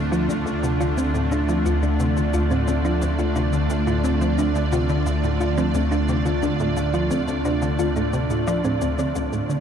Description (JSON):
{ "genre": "ambient, sequencer-driven space music", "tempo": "88 BPM", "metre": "4/4", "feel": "straight", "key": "D minor", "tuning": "A4 = 440 Hz", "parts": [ { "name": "evolving wavetable pad", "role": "sustained chords", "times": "0.0-9.6 s", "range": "D3 to D5", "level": "-24 LUFS", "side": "right 1 dB", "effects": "ensemble chorus, built-in reverb" }, { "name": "warm sub bass", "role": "bass", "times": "0.0-9.6 s", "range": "D2", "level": "-26 LUFS", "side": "equal", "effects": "none" }, { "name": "thumb-piano-like synth pluck", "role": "arpeggios", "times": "0.1-9.1 s", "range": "C4 to D5", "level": "-26 LUFS", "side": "left 2 dB", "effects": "chorus, auto-pan, ping-pong delay" }, { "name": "resonant blip pluck", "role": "riff", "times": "0.1-9.5 s", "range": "D2 to F3", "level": "-25 LUFS", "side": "equal", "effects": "chorus, ping-pong delay" }, { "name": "shaker and woodblock", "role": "percussion", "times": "0.1-9.6 s", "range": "none", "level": "-42 LUFS", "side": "left 1 dB", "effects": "ping-pong delay" } ], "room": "wet huge ambient reverb, RT60 7.8 s", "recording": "dark, warm production", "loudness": "-19 LUFS", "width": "side -8 dB against mid", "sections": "0.0-9.2 A section", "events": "none", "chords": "0.0 Dm7" }